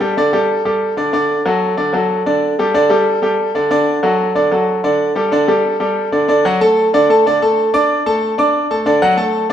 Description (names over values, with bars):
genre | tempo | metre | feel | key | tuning
latin | 186 BPM | 4/4 | straight | D major | A4 = 440 Hz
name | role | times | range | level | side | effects
bright grand piano | solo | 0.0-9.5 s | D3 to D6 | -12 LUFS | equal | none
room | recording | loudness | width
wet large studio reverb, RT60 1.4 s | band playing live in one room | -12 LUFS | side -9 dB against mid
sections
0.0-6.3 A section; 6.3-9.5 B section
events
none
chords
0.0 Gsus2; 1.1 D; 2.4 Gsus2; 3.7 D; 5.0 Gsus2; 6.3 D; 7.6 Asus4; 8.9 D